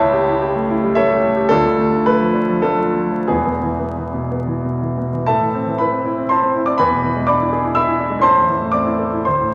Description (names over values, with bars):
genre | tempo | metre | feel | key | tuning
classical, romantic character piece for solo piano | 88-127 BPM | 3/4 | rubato | A minor | A4 = 444 Hz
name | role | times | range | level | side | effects
clear concert grand piano | solo | 0.0-9.5 s | E1 to E6 | -17 LUFS | equal | none
room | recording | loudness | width
wet recital hall reverb, RT60 1.6 s | vinyl crackle | -17 LUFS | mono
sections
0.0-5.3 A section; 5.3-9.5 B section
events
none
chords
0.0 A7/C#; 1.5 Dm; 3.3 E; 5.3 Am; 6.8 E7; 8.2 Am